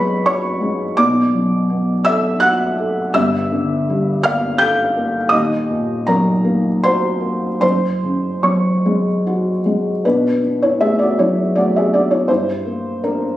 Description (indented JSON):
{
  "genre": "neoclassical minimalist piano",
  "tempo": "74-85 BPM",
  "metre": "3/4",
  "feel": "rubato",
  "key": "unclear",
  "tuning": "A4 = 438 Hz",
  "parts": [
    { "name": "felt-muted upright piano", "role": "solo", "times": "0.0-13.4 s", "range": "D#1 to G6", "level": "-14 LUFS", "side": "equal", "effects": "none" }
  ],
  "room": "moderate booth ambience, RT60 0.2 s",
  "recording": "recorded on a phone in the room, studio reverb",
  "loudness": "-14 LUFS",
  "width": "side -14 dB against mid",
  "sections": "0.0-10.0 A section; 10.0-13.4 A section",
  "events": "none",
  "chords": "0.0 F#sus2; 1.0 Bm7; 3.1 Gmadd9; 5.3 D#m; 7.6 F#sus2; 10.0 Bm7; 12.3 Gm",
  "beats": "0.28 | 1.00 1.71 2.42 | 3.15 3.88 4.60 | 5.32 6.07 6.84 | 7.62 8.44 9.24 | 10.04 10.80 11.55 | 12.29 13.02"
}